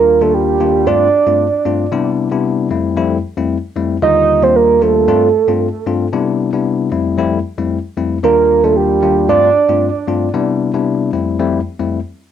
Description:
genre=afrobeats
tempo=114 BPM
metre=4/4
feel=straight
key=C major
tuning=A4 = 440 Hz
part: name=soft octave-layered synth lead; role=melody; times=0.0-10.0 s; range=G4 to Eb5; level=-12 LUFS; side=right 6 dB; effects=chorus, cassette tape, analog delay
part: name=bell-like tine electric piano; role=accompaniment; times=0.0-12.0 s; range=Eb2 to F4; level=-15 LUFS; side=left 6 dB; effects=fast stereo tremolo, cassette tape
room=moderate small room reverb, RT60 0.5 s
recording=home recording on cassette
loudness=-12 LUFS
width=side -9 dB against mid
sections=0.0-12.3 A section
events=none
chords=0.0 Ebmaj7; 0.9 G9sus4; 1.9 Cmaj9; 2.7 Fmaj7; 4.0 Ebmaj7; 5.1 G9sus4; 6.1 Cmaj9; 6.9 Fmaj7; 8.2 Ebmaj7; 9.3 G9sus4; 10.3 Cmaj9; 11.1 Fmaj7

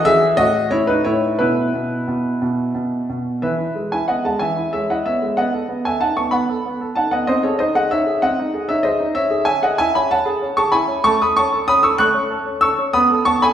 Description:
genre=classical-period piano sonatina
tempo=58-65 BPM (dotted quarters)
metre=6/8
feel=rubato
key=E major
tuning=A4 = 440 Hz
part: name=clear baby grand piano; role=solo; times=0.0-13.5 s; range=A2 to F#6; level=-16 LUFS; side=equal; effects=none
room=wet recital hall reverb, RT60 1.7 s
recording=heard from further back in the room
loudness=-16 LUFS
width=side -10 dB against mid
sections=0.0-3.4 A section; 3.4-13.5 B section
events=none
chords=0.4 F#m/A; 1.4 E5/B; 3.4 E; 5.4 B7; 7.3 G#/B#; 9.2 C#m; 11.1 F#m/A; 13.0 B7

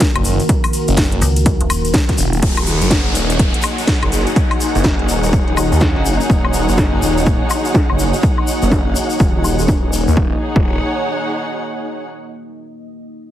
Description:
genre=bass house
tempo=124 BPM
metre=4/4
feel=swing 61% on 16ths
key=Eb minor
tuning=A4 = 440 Hz
part: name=deep dark ambient pad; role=sustained chords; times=0.0-10.4 s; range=Eb3 to Eb5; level=-23 LUFS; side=left 1 dB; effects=chorus, built-in reverb, sidechain pumping
part: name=electronic kick drum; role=drums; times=0.0-10.6 s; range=none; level=-16 LUFS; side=equal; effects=overdrive
part: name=house drum kit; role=drums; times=0.0-10.2 s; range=hi-hat, snare drum, woodblock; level=-21 LUFS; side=left 1 dB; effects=overdrive, low-pass filter on hats, low-pass filter on perc, low-pass filter on snare, low-pass filter on room
part: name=egg shaker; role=percussion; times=0.0-10.2 s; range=none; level=-27 LUFS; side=left 4 dB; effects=none
part: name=phased detuned saw bass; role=bass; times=0.2-10.8 s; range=Eb1 to Eb2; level=-18 LUFS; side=equal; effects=phaser, overdrive, sidechain pumping
part: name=metallic FM bass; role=bass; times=1.2-1.9 s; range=Eb1 to Db2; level=-17 LUFS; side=equal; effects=tube saturation, sidechain pumping
part: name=downlifter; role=sound effects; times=2.4-6.3 s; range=none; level=-25 LUFS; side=equal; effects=none
part: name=dark studio string section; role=texture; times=2.4-12.1 s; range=Eb4 to Gb5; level=-22 LUFS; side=right 1 dB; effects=sidechain pumping
room=light reverb, digital ambience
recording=heavily compressed radio sound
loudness=-13 LUFS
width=side -12 dB against mid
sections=0.0-2.4 A section; 2.4-10.2 B section; 10.2-12.1 C section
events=drop 0.0-2.4; filter sweep on drum 2.4-10.2; filter sweep on detuned saw bass 2.4-10.2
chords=0.0 Ebm

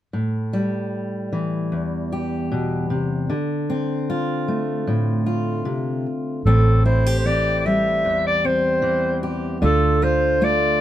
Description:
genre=acoustic folk-pop ballad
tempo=76 BPM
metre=4/4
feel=straight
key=A minor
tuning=A4 = 440 Hz
part: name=fingerpicked steel-string acoustic guitar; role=accompaniment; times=0.1-10.8 s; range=E2 to G4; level=-22 LUFS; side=left 1 dB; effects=none
part: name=breathy clarinet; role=melody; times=6.5-10.8 s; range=A4 to E5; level=-19 LUFS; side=equal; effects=none
part: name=vintage muted fingered electric bass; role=bass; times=6.5-10.8 s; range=A1 to D2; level=-20 LUFS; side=right 1 dB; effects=none
room=light reverb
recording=close, detailed microphones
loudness=-19 LUFS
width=side -12 dB against mid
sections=0.1-6.5 A section; 6.5-10.8 B section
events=none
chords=0.1 Am7; 3.3 Dm7; 6.5 Am7; 9.6 Dm7

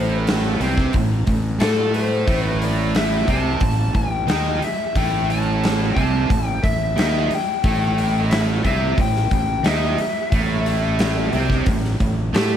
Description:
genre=blues rock power trio and southern rock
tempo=89 BPM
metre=4/4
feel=straight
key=A minor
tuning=A4 = 437 Hz
part: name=lead guitar through a small cranked amp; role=melody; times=0.0-12.6 s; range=G4 to A5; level=-25 LUFS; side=left 3 dB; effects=overdrive
part: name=distorted electric guitar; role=riff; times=0.0-12.6 s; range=A2 to A4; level=-23 LUFS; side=right 2 dB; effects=distortion
part: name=fuzz fingered electric bass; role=bass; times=0.0-12.6 s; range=A1 to A2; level=-22 LUFS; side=equal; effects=overdrive
part: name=huge arena drum kit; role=drums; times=0.3-12.5 s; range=hi-hat, kick drum, snare drum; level=-22 LUFS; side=equal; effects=none
room=little or no reverb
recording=vinyl crackle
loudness=-17 LUFS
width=side -9 dB against mid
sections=0.0-12.6 A section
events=none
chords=0.0 Am

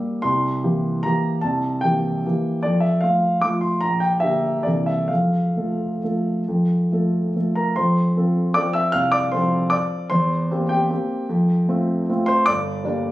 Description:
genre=classical, piano waltz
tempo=130-164 BPM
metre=3/4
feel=rubato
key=F major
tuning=A4 = 440 Hz
part: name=warm baby grand piano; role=solo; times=0.0-13.1 s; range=G1 to F6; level=-18 LUFS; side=equal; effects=none
room=light reverb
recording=recorded on a phone in the room, studio ambience, compression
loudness=-18 LUFS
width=side -16 dB against mid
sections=0.0-7.8 A section; 7.8-13.1 B section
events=none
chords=0.2 C7; 2.6 F; 3.8 Gm/Bb; 4.7 C13; 5.1 F; 10.1 C7/E; 11.3 F; 12.5 Gm

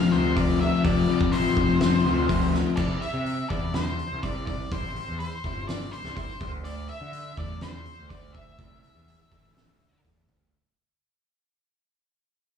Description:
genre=quiet-loud alternative rock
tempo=124 BPM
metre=4/4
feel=straight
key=C major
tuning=A4 = 441 Hz
part: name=octave-fuzz lead guitar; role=melody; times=0.0-10.0 s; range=C5 to F5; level=-33 LUFS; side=left 2 dB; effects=distortion, plate reverb, slapback echo, tape echo
part: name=crunchy overdriven guitar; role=riff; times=0.0-2.8 s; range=F2 to F3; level=-23 LUFS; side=left 12 dB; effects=none
part: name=fuzz guitar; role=riff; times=0.0-2.8 s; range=F2 to F3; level=-29 LUFS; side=right 12 dB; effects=distortion, slapback echo
part: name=fuzz picked electric bass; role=bass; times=0.0-10.5 s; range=F1 to D3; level=-30 LUFS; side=equal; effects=overdrive
part: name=loose indie drum kit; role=drums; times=0.4-10.4 s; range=crash cymbal, hi-hat, kick drum, snare drum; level=-30 LUFS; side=equal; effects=none
part: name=twelve-string electric guitar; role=arpeggios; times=2.8-10.3 s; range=G2 to E4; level=-42 LUFS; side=right 2 dB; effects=ensemble chorus, plate reverb, slapback echo
room=light reverb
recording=live gig heard through the venue's PA, club reverb, studio ambience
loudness=-23 LUFS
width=side -7 dB against mid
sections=0.0-2.8 A section; 2.8-10.5 B section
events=fade-out 2.8-10.5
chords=0.0 F5; 2.8 C; 6.4 Dsus2

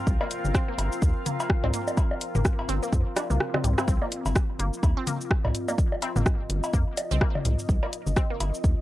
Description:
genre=minimal techno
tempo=126 BPM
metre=4/4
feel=swing 58% on 16ths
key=C minor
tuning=A4 = 440 Hz
part: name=deep dark ambient pad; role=texture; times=0.0-8.8 s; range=C4 to F5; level=-34 LUFS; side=left 1 dB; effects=chorus, built-in reverb, sidechain pumping
part: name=rubbery square bass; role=bass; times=0.1-8.8 s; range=G1 to F2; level=-26 LUFS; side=equal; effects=sidechain pumping
part: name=electronic kick drum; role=drums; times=0.1-8.8 s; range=none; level=-24 LUFS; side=equal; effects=overdrive
part: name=house drum kit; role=drums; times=0.1-8.8 s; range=cabasa, hi-hat, rim click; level=-30 LUFS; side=equal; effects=overdrive
part: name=resonant blip pluck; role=riff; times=0.2-8.3 s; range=G3 to D4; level=-35 LUFS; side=equal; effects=phaser, sidechain pumping, tape echo
part: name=electronic cowbell, bongos and toms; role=percussion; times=0.2-8.5 s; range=none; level=-30 LUFS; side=left 1 dB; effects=none
room=little or no reverb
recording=dry, gritty hardware recording, cassette tape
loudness=-23 LUFS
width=side -15 dB against mid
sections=0.0-8.8 A section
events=drum fill 3.2-3.9; kick drops out 3.4-3.9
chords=0.0 Cm

